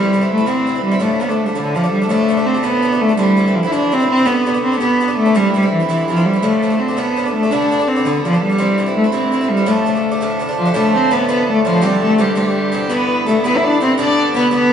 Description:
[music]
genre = celtic folk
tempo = 111 BPM (dotted quarters)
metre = 6/8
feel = straight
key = D dorian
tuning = A4 = 439 Hz
[part]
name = rich cello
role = melody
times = 0.0-14.7 s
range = D3 to E4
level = -14 LUFS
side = equal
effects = none
[part]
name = Irish bouzouki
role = accompaniment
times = 0.0-14.7 s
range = G2 to E4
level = -20 LUFS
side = right 2 dB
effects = none
[part]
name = pedal harmonium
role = drone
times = 0.0-14.7 s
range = D2 to D3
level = -26 LUFS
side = left 2 dB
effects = none
[part]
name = rich fiddle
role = second line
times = 10.6-14.7 s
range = F4 to D5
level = -22 LUFS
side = left 3 dB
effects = none
[sound]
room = wet stone room reverb, RT60 1.3 s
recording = band playing live in one room, nothing above 11.0 kHz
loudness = -13 LUFS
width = side -8 dB against mid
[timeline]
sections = 0.0-2.1 A section; 2.1-10.7 A section; 10.7-14.7 B section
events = none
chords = 0.0 C; 1.0 Dm; 3.2 C; 4.3 G; 5.3 C; 6.4 Dm; 7.5 G/D; 8.6 C; 9.7 Dm; 11.8 Cadd9; 12.9 Em; 14.0 G

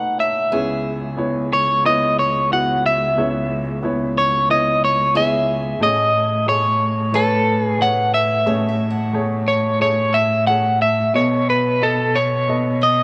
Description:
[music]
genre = acoustic folk-pop ballad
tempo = 90 BPM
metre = 4/4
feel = straight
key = C# minor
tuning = A4 = 441 Hz
[part]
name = electric guitar at the edge of break-up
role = melody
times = 0.0-13.0 s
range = A4 to F#5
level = -20 LUFS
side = equal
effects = tremolo
[part]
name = warm upright piano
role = accompaniment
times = 0.0-13.0 s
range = A1 to F#5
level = -26 LUFS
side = equal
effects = none
[part]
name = picked steel-string acoustic guitar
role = arpeggios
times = 0.5-13.0 s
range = G#4 to F#5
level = -32 LUFS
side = equal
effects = none
[part]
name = warm cello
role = bass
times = 0.5-13.0 s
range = C#2 to B2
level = -26 LUFS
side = equal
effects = none
[sound]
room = moderate echo chamber reverb, RT60 2.2 s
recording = none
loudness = -18 LUFS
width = mono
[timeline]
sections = 0.5-13.0 A section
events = none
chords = 0.0 B7; 0.5 C#m7; 5.8 Amaj7; 11.1 B7

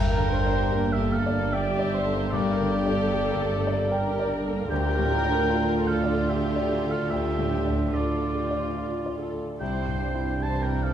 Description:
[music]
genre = cinematic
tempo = 74 BPM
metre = 3/4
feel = uneven beats, rubato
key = D minor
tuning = A4 = 439 Hz
[part]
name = dark studio violin section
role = melody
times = 0.0-10.9 s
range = A3 to G4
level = -34 LUFS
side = left 2 dB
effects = none
[part]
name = warm oboe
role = second line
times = 0.0-10.9 s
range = D5 to A5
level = -31 LUFS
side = right 1 dB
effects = none
[part]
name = warm studio violin section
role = second line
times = 0.0-10.9 s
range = F4 to C5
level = -32 LUFS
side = left 1 dB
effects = none
[part]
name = dark symphonic viola section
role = accompaniment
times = 0.0-10.9 s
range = E3 to D5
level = -33 LUFS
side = left 1 dB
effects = none
[part]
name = warm concert grand piano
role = accompaniment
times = 0.0-10.9 s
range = C2 to G5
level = -30 LUFS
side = left 2 dB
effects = none
[part]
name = dark chamber cello section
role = bass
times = 0.0-10.9 s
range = G2 to D3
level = -31 LUFS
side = right 3 dB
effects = none
[part]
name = rich studio double bass section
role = bass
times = 0.0-10.9 s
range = G1 to D2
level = -30 LUFS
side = right 2 dB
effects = none
[sound]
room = wet recital hall reverb, RT60 1.5 s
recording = dark, warm production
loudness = -23 LUFS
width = side -10 dB against mid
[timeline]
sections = 0.0-10.9 A section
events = none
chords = 0.0 Gmadd9; 4.7 Dm; 9.6 C

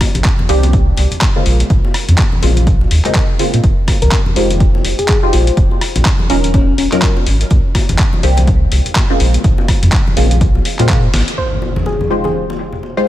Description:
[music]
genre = deep house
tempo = 124 BPM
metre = 4/4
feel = swing 59% on 16ths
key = F minor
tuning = A4 = 440 Hz
[part]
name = dusty soul sampler-style drum kit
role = drums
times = 0.0-12.9 s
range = crash cymbal, handclaps, hi-hat, rim click, snare drum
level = -20 LUFS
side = left 1 dB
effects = low-pass filter on hats, low-pass filter on snare, low-pass filter on cymbals
[part]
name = electronic kick drum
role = drums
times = 0.0-11.0 s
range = none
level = -14 LUFS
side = equal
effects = none
[part]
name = bongos and congas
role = percussion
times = 0.0-12.9 s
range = none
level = -23 LUFS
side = left 3 dB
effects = sidechain pumping on perc
[part]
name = warm sub bass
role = bass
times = 0.1-11.2 s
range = Eb1 to Bb2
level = -13 LUFS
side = equal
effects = sidechain pumping
[part]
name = filtered dub chord stab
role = stabs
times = 0.5-13.1 s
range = Db3 to C5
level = -19 LUFS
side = equal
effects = phaser, wide subtle chorus, sidechain pumping, digital delay
[part]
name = bell-like FM electric piano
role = melody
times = 4.0-7.0 s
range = Db4 to Bb4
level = -21 LUFS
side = left 3 dB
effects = chorus, cassette tape, digital delay
[part]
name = soft round pluck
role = melody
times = 11.4-13.1 s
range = Ab4 to C5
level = -21 LUFS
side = equal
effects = chorus, tape echo
[part]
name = impact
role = sound effects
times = 11.4-13.1 s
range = none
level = -22 LUFS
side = equal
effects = none
[sound]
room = digital ambience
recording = none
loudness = -10 LUFS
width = side -14 dB against mid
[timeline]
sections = 0.0-11.4 A section; 11.4-13.1 B section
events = drum fill 11.1; band accent 11.1; impact 11.4-13.1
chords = 0.0 Cm9; 1.5 Bbm9; 3.6 Fm9; 5.6 Ebm9; 7.5 Cm9; 9.2 Bbm9; 11.4 Fm9

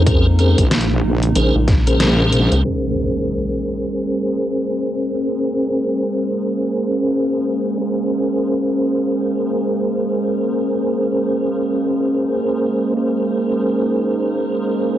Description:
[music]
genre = glitch hop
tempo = free time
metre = none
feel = none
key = Bb minor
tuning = A4 = 435 Hz
[part]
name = warbly tape-like pad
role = sustained chords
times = 0.0-15.0 s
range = Db3 to Eb4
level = -21 LUFS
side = right 1 dB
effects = chorus, built-in reverb, sidechain pumping, cassette tape
[part]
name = tonewheel organ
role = stabs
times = 0.0-15.0 s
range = Db4 to C5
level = -20 LUFS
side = equal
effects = overdrive, chorus vibrato, slow rotary speaker, sidechain pumping, cassette tape, analog delay
[part]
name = rubbery square bass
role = bass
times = 0.0-2.6 s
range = Bb1 to F2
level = -15 LUFS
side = equal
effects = none
[part]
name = dubstep drum kit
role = drums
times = 0.1-2.6 s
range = hi-hat, rim click, snare drum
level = -22 LUFS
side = equal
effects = low-pass filter on hats, low-pass filter on snare, low-pass filter on room
[part]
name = electronic kick drum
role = drums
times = 0.1-1.8 s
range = none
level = -17 LUFS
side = equal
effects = none
[part]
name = wobble bass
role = bass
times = 0.6-2.5 s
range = Bb1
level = -17 LUFS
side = equal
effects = chorus, tube saturation
[part]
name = impact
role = sound effects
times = 2.6-5.2 s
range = none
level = -26 LUFS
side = equal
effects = none
[sound]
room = light reverb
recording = home recording on cassette, low-pass filter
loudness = -16 LUFS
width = side -12 dB against mid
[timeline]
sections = 0.0-2.6 A section; 2.6-15.0 B section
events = kick drops out 2.0-2.6; band accent 2.0-2.3; impact 2.6-5.2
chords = 0.0 Bbm9

